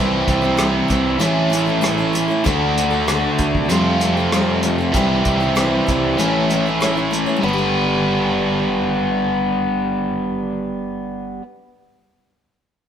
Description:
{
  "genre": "folk rock and heartland rock",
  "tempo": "96 BPM",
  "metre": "4/4",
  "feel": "straight",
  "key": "G major",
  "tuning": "A4 = 440 Hz",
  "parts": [
    { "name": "picked steel-string acoustic guitar", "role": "accompaniment", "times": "0.0-11.5 s", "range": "A2 to C#5", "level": "-23 LUFS", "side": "left 2 dB", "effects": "none" },
    { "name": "biting overdriven guitar", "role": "riff", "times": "0.0-11.4 s", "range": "F2 to B4", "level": "-18 LUFS", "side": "right 1 dB", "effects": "none" },
    { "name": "picked electric bass", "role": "bass", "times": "0.0-11.4 s", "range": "G1 to F2", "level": "-25 LUFS", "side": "equal", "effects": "none" },
    { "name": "cloth-damped thuddy drum kit", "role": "drums", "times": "0.3-7.3 s", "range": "hi-hat, kick drum, rim click", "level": "-24 LUFS", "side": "equal", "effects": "none" }
  ],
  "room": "moderate stone room reverb, RT60 1.5 s",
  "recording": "band playing live in one room",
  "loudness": "-16 LUFS",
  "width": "side -8 dB against mid",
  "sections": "0.0-7.4 A section; 7.4-9.9 B section",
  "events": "none",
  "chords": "0.0 C; 1.2 A; 2.5 D; 3.7 Fadd9; 4.9 C; 6.2 A; 7.4 Gadd9"
}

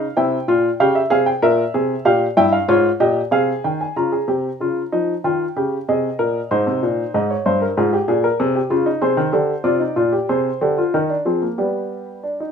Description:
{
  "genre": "classical, baroque-style 3-part fugue for grand piano",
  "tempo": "95 BPM",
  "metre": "4/4",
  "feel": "straight",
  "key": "unclear",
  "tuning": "A4 = 440 Hz",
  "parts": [
    { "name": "warm baby grand piano", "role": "solo", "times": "0.0-12.5 s", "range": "G2 to Bb5", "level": "-16 LUFS", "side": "equal", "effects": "none" }
  ],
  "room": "light reverb",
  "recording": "minimal, uncompressed stereo recording",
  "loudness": "-16 LUFS",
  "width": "side -7 dB against mid",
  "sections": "0.0-4.0 A section; 4.0-12.5 B section",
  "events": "none",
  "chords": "0.2 C; 1.4 C7/Bb; 2.7 Fm/Ab; 4.0 Bbm; 5.2 Eb; 6.5 Ab; 7.8 Db/Ab; 9.0 Fm; 11.6 G"
}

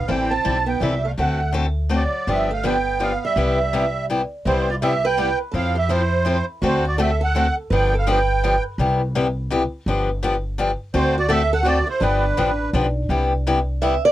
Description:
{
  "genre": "acoustic string swing (jazz manouche)",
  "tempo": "166 BPM",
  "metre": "3/4",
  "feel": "swing 63% on 8ths",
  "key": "C major",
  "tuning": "A4 = 440 Hz",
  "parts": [
    { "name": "musette accordion", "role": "melody", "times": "0.0-8.6, 10.9-12.7 s", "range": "B4 to A5", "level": "-22 LUFS", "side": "right 3 dB", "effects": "none" },
    { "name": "picked acoustic archtop guitar", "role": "second line", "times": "0.0-8.6, 10.9-14.1 s", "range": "F#3 to E5", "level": "-25 LUFS", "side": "right 4 dB", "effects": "none" },
    { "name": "upright bass", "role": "bass", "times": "0.0-14.0 s", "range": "G1 to F2", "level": "-23 LUFS", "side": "equal", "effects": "none" },
    { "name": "picked steel-string acoustic guitar", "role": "accompaniment", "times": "0.1-13.9 s", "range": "C3 to A4", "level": "-22 LUFS", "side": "left 3 dB", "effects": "none" }
  ],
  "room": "light reverb",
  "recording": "worn, warbling old tape, cassette tape, warbly pitch drift",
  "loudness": "-18 LUFS",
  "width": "side -14 dB against mid",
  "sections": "0.0-4.4 A section; 4.4-13.1 B section; 13.1-14.1 C section",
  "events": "steel-string acoustic guitar solo 13.1-14.1",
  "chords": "0.1 Am7; 1.2 D7; 2.3 G7; 3.4 Cmaj7; 5.5 Fmaj7; 6.6 D7; 7.7 G7; 8.8 Cmaj7; 9.9 G7; 10.9 D7; 12.0 G7; 13.1 Cmaj7"
}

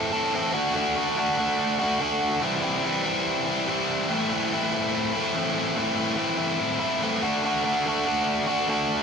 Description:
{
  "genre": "rock",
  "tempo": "144 BPM",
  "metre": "4/4",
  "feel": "straight",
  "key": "A dorian",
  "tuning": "A4 = 441 Hz",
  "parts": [
    { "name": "biting overdriven guitar", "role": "solo", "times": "0.0-9.0 s", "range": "A2 to A4", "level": "-22 LUFS", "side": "equal", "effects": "spring reverb, tape echo" }
  ],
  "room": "moderate studio ambience, RT60 0.5 s",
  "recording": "none",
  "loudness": "-22 LUFS",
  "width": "side -6 dB against mid",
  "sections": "0.0-5.8 A section; 5.8-9.0 A section",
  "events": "none",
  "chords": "0.0 Am; 0.5 D; 2.4 C; 4.1 Am; 7.2 D"
}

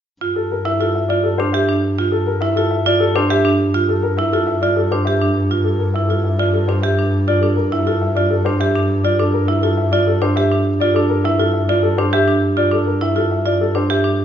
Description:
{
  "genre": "classical, minimalist pattern music",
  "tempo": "102 BPM",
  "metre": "3/4",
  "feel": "straight",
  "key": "G dorian",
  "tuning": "A4 = 440 Hz",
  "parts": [
    { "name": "marimba with hard mallets", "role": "arpeggios", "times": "0.2-14.2 s", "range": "D4 to G4", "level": "-18 LUFS", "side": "right 4 dB", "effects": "none" },
    { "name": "rich double bass", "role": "bass", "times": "0.2-14.2 s", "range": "G2", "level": "-20 LUFS", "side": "left 1 dB", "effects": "none" },
    { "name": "warm grand piano", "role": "melody", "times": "0.4-14.1 s", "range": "A4 to E5", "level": "-20 LUFS", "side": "left 5 dB", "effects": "none" }
  ],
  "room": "wet recital hall reverb, RT60 1.3 s",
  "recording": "recorded in a church or concert hall, nothing above 7.4 kHz",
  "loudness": "-14 LUFS",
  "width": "side -9 dB against mid",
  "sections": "0.2-14.2 A section",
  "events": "none",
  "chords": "0.2 G7sus2"
}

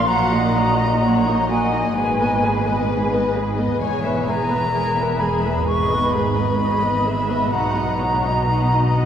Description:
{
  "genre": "cinematic, emotional film score for orchestra",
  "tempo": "64 BPM",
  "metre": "4/4",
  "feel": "rubato",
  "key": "G# minor",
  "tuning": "A4 = 438 Hz",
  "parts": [
    { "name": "muted studio violin section", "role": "melody", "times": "0.0-9.1 s", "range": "B4 to G#5", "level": "-30 LUFS", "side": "left 4 dB", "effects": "none" },
    { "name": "muted studio violin section", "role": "second line", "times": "0.0-9.1 s", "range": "G#4 to F#5", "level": "-28 LUFS", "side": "left 1 dB", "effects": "none" },
    { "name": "silver concert flute", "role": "second line", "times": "0.0-9.1 s", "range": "G#5 to C#6", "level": "-22 LUFS", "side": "equal", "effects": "none" },
    { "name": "muted studio viola section", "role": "accompaniment", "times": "0.0-9.1 s", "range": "F#3 to B4", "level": "-24 LUFS", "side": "equal", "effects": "none" },
    { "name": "muted studio cello section", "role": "bass", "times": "0.0-9.1 s", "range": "E2 to B2", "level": "-24 LUFS", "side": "right 1 dB", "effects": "none" },
    { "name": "muted studio double bass section", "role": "bass", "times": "0.0-9.1 s", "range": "E1 to B1", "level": "-24 LUFS", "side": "right 1 dB", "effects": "none" }
  ],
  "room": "wet cathedral reverb, RT60 5.1 s",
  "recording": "recorded in a church or concert hall",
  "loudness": "-17 LUFS",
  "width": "side -9 dB against mid",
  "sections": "0.0-9.1 A section",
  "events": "none",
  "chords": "0.1 D#m/A#; 2.0 G#m; 3.8 E; 5.7 G#m; 7.5 B"
}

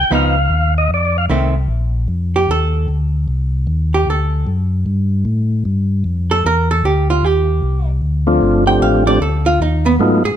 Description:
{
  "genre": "soul jazz organ trio",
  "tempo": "152 BPM",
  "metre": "4/4",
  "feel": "swing 65% on 8ths",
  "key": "Bb major",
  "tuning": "A4 = 439 Hz",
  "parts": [
    { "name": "percussive tonewheel organ", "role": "melody", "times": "0.0-1.3, 8.3-10.2 s", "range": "F3 to G5", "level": "-15 LUFS", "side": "equal", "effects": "slow rotary speaker, overdrive" },
    { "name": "mellow tonewheel organ", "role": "bass", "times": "0.0-10.3 s", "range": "G1 to A2", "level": "-16 LUFS", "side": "left 1 dB", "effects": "overdrive, chorus vibrato, slow rotary speaker" },
    { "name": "archtop guitar, miked and amplified", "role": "accompaniment", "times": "0.1-10.4 s", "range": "Eb3 to G5", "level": "-17 LUFS", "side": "right 3 dB", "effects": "none" }
  ],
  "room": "light reverb",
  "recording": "close, detailed microphones",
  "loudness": "-13 LUFS",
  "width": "side -10 dB against mid",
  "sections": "0.0-1.7 A section; 1.7-10.4 A section",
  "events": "tonewheel organ solo 0.0-1.7; hollow-body jazz guitar solo 1.7-10.4",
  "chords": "0.1 Db9; 0.9 F7; 1.7 Bbmaj7; 3.3 Cm; 4.1 D; 4.9 Fadd9; 6.4 Dmadd9; 7.2 Eb; 8.0 Dm7; 9.6 B7#11"
}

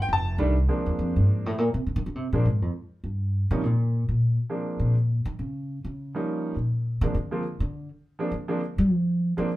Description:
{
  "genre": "jazz, small-group swing and bop",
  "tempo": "204 BPM",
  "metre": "4/4",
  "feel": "swing 60% on 8ths",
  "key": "Bb mixolydian",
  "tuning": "A4 = 440 Hz",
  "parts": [
    { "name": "clear grand piano", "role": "accompaniment", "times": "0.0-9.5 s", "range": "Eb3 to A5", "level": "-28 LUFS", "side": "right 1 dB", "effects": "none" },
    { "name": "upright bass", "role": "bass", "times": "0.0-9.6 s", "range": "F1 to G3", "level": "-24 LUFS", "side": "equal", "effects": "none" }
  ],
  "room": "moderate club reverb, RT60 0.7 s",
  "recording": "minimal, uncompressed stereo recording",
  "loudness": "-23 LUFS",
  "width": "side -16 dB against mid",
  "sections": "0.7-9.6 A section",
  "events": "upright bass solo 0.7-9.6",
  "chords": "0.1 F13; 0.7 Bb9; 3.0 Eb (rootless); 4.2 Bb9; 5.4 Eb9; 6.6 Bb9"
}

